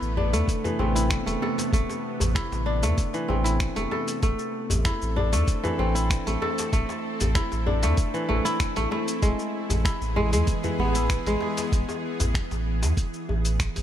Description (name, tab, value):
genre	organic downtempo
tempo	96 BPM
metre	4/4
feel	straight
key	A harmonic minor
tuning	A4 = 441 Hz
part	bowed-like drone	sustained chords	0.0-13.8 s	C3 to A4	-32 LUFS	equal	built-in reverb, sidechain pumping
part	kora	arpeggios	0.0-13.6 s	E3 to A4	-28 LUFS	equal	digital delay
part	warm sub bass	bass	0.0-13.8 s	E1 to E2	-25 LUFS	equal	tube saturation, sidechain pumping
part	dusty soul sampler-style drum kit	drums	0.0-13.8 s	cabasa, finger snaps, hi-hat	-32 LUFS	left 1 dB	overdrive
part	djembe	percussion	0.2-13.8 s	none	-33 LUFS	left 1 dB	none
part	electronic kick drum	drums	0.5-13.7 s	none	-26 LUFS	equal	overdrive
room	light reverb, digital ambience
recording	none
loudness	-23 LUFS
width	side -10 dB against mid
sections	0.0-13.8 A section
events	none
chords	0.0 Amadd9; 4.2 Amadd11; 9.2 E/A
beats	0.48 1.10 | 1.73 2.35 2.98 3.60 | 4.23 4.85 5.48 6.10 | 6.73 7.35 7.98 8.60 | 9.23 9.85 10.48 11.10 | 11.73 12.35 12.98 13.60